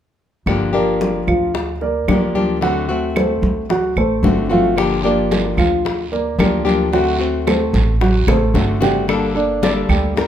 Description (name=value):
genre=latin, Cuban son and guajira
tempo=111 BPM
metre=4/4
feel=straight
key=G minor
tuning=A4 = 441 Hz
part: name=nylon-string guitar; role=accompaniment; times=0.5-10.2 s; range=D3 to A4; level=-20 LUFS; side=left 4 dB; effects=none
part: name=upright bass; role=bass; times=0.5-10.3 s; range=G1 to D2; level=-21 LUFS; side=right 1 dB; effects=none
part: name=bongos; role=percussion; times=0.5-10.3 s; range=none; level=-25 LUFS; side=left 5 dB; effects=none
part: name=claves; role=percussion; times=0.5-10.2 s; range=none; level=-29 LUFS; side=right 4 dB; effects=none
part: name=congas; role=percussion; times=0.5-10.3 s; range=none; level=-24 LUFS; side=equal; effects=none
part: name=dark baby grand piano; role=arpeggios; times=0.7-10.3 s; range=F3 to G5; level=-19 LUFS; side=right 2 dB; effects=none
part: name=guiro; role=percussion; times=4.8-10.3 s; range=none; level=-31 LUFS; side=right 6 dB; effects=none
part: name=nylon-string guitar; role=melody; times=9.6-10.3 s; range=Bb4 to D5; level=-21 LUFS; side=left 3 dB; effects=none
room=light reverb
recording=minimal, uncompressed stereo recording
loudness=-14 LUFS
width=side -10 dB against mid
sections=0.5-9.1 A section; 9.1-10.3 B section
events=drum fill 8.0-9.1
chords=0.5 Gm7; 2.6 D7; 4.8 Gm7; 6.9 D7; 9.1 Gmadd9